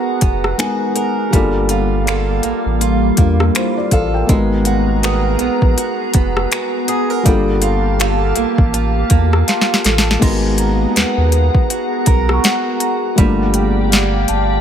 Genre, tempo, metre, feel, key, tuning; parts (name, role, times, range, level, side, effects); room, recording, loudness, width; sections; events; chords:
contemporary R&B; 81 BPM; 4/4; swing 58% on 16ths; A4 = 440 Hz
felt-muted upright piano; accompaniment; 0.0-14.6 s; G3 to G5; -21 LUFS; left 3 dB
glassy FM pad; sustained chords; 0.0-14.6 s; G3 to A#5; -20 LUFS; left 1 dB; ensemble chorus, built-in reverb, sidechain pumping
picked old ladder-braced acoustic guitar; arpeggios; 0.0-14.6 s; G3 to A#4; -22 LUFS; right 9 dB; tape echo
celesta; texture; 0.0-14.6 s; D#5 to D#6; -28 LUFS; left 1 dB; tape echo
round analog bass; bass; 0.2-14.6 s; E#1 to E2; -17 LUFS; equal
smooth R&B drum kit; drums; 0.2-14.5 s; crash cymbal, finger snaps, hi-hat, kick drum, rim click, snare drum; -16 LUFS; equal; overdrive
small room ambience; -13 LUFS; side -9 dB against mid
0.0-10.2 A section; 10.2-14.6 B section
drum fill 9.5-10.2
0.0 G#m9; 1.3 Gm9; 4.3 G#m9; 7.3 Gm9; 10.2 G#m9; 13.2 Gm9